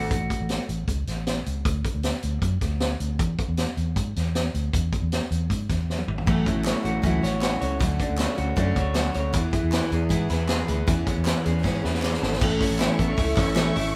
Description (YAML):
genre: jangly indie pop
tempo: 156 BPM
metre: 4/4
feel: straight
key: A major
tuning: A4 = 440 Hz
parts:
  - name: picked steel-string acoustic guitar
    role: accompaniment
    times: 0.0-0.1, 6.3-13.9 s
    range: A2 to A4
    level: -30 LUFS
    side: equal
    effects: none
  - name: warm studio string section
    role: sustained chords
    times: 0.0-0.1, 12.4-14.0 s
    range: A4 to C#6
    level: -36 LUFS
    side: equal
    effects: none
  - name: electric guitar through a small old amp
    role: arpeggios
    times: 0.0-0.7, 6.3-14.0 s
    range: A2 to C#5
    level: -31 LUFS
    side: equal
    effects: none
  - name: vintage muted fingered electric bass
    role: bass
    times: 0.0-13.9 s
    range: G#1 to G#2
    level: -29 LUFS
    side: equal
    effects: none
  - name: vintage drum kit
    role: drums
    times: 0.1-13.8 s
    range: crash cymbal, hi-hat, kick drum, snare drum, toms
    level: -29 LUFS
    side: equal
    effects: none
  - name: group handclap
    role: percussion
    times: 6.6-13.7 s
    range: none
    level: -38 LUFS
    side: equal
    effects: none
room: moderate studio ambience, RT60 0.4 s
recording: band playing live in one room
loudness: -25 LUFS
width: mono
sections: 0.1-12.4 A section; 12.4-14.0 B section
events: drum fill 5.9-6.3, 11.6-12.4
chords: 0.1 A; 1.7 N.C.; 4.7 E; 6.3 A6; 7.8 Dmaj7; 9.3 E; 10.9 C#m7/E